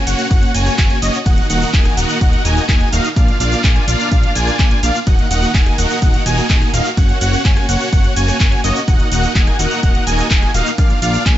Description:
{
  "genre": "EDM, festival progressive house",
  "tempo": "126 BPM",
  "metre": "4/4",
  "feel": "straight",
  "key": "Eb minor",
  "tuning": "A4 = 440 Hz",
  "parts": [
    { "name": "rich studio string section", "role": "sustained chords", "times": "0.0-11.4 s", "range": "Eb3 to Bb4", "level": "-26 LUFS", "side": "left 2 dB", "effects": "sidechain pumping" },
    { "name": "wide unison lead", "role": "arpeggios", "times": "0.0-11.4 s", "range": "Eb5 to Ab5", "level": "-22 LUFS", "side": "right 1 dB", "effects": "sidechain pumping, tape echo" },
    { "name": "dense compressed supersaw", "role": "riff", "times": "0.0-11.4 s", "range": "Bb3 to Ab5", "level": "-20 LUFS", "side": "right 1 dB", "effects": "sidechain pumping, tape echo" },
    { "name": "fat analog bass", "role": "bass", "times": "0.1-11.4 s", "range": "Eb1 to Bb1", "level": "-19 LUFS", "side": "equal", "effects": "sidechain pumping" },
    { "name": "house drum kit", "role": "drums", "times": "0.1-11.4 s", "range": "cabasa, handclaps, hi-hat, ride cymbal, rim click", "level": "-22 LUFS", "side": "equal", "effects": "studio reverb" },
    { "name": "electronic kick drum", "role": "drums", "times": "0.3-11.4 s", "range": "none", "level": "-14 LUFS", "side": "equal", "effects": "studio reverb" }
  ],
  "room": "digital ambience",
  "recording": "nothing above 7.8 kHz",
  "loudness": "-12 LUFS",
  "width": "side -13 dB against mid",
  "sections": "0.0-11.4 A section",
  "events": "none",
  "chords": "0.0 Gb; 1.3 Ebm; 3.2 Bb; 5.1 Ebm; 7.0 Gb; 8.9 Ebm; 10.8 Bb"
}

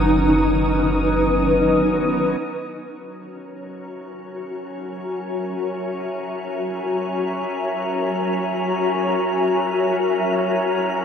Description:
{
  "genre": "ambient",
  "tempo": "free time",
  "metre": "none",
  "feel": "none",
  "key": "F# mixolydian",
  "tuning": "A4 = 440 Hz",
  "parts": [
    { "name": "granular cloud pad", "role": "sustained chords", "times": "0.0-11.0 s", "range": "C#4 to A#5", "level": "-21 LUFS", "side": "left 1 dB", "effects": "built-in reverb" },
    { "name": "round analog bass", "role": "bass", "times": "0.0-2.4 s", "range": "F#1", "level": "-25 LUFS", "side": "equal", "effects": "none" },
    { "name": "organ-like drone", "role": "drone", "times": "0.0-11.0 s", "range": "F#3 to C#4", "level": "-28 LUFS", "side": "right 1 dB", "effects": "ensemble chorus, built-in reverb" },
    { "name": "wind-like tuned noise texture", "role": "texture", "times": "0.0-11.0 s", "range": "A#4 to D#6", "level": "-30 LUFS", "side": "equal", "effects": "built-in reverb, wide subtle chorus" }
  ],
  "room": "wet lush hall reverb, RT60 2.7 s",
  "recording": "dreamy mix soaked in reverb, lossy compression artefacts",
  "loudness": "-19 LUFS",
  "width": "side -7 dB against mid",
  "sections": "0.0-2.4 A section; 2.4-11.0 B section",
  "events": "fade-in on ambient pad 2.4-11.0; fade-in on synth drone 2.4-11.0; fade-in on synth texture 2.4-11.0",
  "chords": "0.0 Badd9/F#; 2.4 F#7"
}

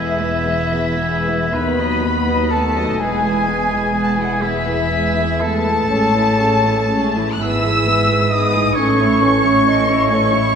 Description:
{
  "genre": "classical, slow romantic movement for symphony orchestra",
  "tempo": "36-46 BPM (dotted quarters)",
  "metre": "6/8",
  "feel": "rubato",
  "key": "E major",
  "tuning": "A4 = 440 Hz",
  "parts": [
    { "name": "muted chamber violin section", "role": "melody", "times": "0.0-10.6 s", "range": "E5 to F#6", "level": "-22 LUFS", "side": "left 1 dB", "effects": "none" },
    { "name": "clear oboe", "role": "second line", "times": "0.0-10.6 s", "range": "E4 to E5", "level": "-22 LUFS", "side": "equal", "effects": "none" },
    { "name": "dark clarinet", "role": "second line", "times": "0.0-10.6 s", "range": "A4 to D#5", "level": "-26 LUFS", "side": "equal", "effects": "none" },
    { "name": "mellow hollow large flute ensemble", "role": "second line", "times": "0.0-10.6 s", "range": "E5 to E6", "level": "-24 LUFS", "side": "left 2 dB", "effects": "none" },
    { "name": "muted chamber violin section", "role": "second line", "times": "0.0-10.6 s", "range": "B3 to D#5", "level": "-28 LUFS", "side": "left 3 dB", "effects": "none" },
    { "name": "muted chamber viola section", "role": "accompaniment", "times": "0.0-10.5 s", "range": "D#3 to E4", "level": "-23 LUFS", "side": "right 2 dB", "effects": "none" },
    { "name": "dark French horn section", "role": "sustained chords", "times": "0.0-10.6 s", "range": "E3 to E4", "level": "-21 LUFS", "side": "equal", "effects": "none" },
    { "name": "muted chamber cello section", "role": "bass", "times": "0.0-10.6 s", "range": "D#2 to A2", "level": "-25 LUFS", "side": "right 1 dB", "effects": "none" },
    { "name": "muted chamber double bass section", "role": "bass", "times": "0.0-10.6 s", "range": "E1 to D#2", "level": "-26 LUFS", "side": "right 2 dB", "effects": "none" }
  ],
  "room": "wet recital hall reverb, RT60 1.7 s",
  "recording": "minimal, uncompressed stereo recording",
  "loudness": "-14 LUFS",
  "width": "side -7 dB against mid",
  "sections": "0.0-10.6 A section",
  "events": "none",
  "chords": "0.0 E; 1.5 B/D#; 3.0 E; 5.9 Amaj7; 7.4 E/G#; 8.8 A"
}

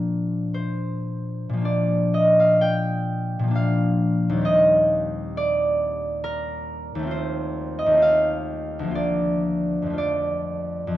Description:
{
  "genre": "classical, solo harp piece",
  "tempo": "52-70 BPM",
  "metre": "3/4",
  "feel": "rubato",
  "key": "Bb major",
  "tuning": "A4 = 440 Hz",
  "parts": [
    { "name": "concert harp", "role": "solo", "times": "0.0-11.0 s", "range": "D2 to G5", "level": "-20 LUFS", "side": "equal", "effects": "none" }
  ],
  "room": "light reverb",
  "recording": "dark, warm production",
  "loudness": "-20 LUFS",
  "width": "side -14 dB against mid",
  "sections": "0.0-1.6 A section; 1.6-11.0 A section",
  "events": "none",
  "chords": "0.0 Bb; 4.5 Cm/Eb; 7.1 F7/Eb; 9.0 Bb/D; 10.0 F"
}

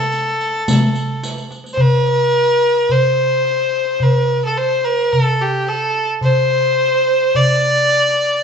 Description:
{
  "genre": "Arabic maqam ensemble",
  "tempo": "108 BPM",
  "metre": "4/4",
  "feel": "straight",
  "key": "unclear",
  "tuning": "A4 = 440 Hz",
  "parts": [
    { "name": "rich violin", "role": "melody", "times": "0.0-8.4 s", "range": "G4 to D5", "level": "-15 LUFS", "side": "equal", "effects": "none" },
    { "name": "darbuka", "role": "percussion", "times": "0.1-8.4 s", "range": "none", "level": "-19 LUFS", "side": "equal", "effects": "none" },
    { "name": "riq", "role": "percussion", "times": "0.1-1.7 s", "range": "none", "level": "-21 LUFS", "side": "left 1 dB", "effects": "none" }
  ],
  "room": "wet stone room reverb, RT60 1.0 s",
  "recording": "band playing live in one room, nothing above 7.9 kHz",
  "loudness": "-13 LUFS",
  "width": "side -6 dB against mid",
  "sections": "0.0-1.8 A section; 1.8-8.4 B section",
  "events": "drum fill 1.2-1.8",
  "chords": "none"
}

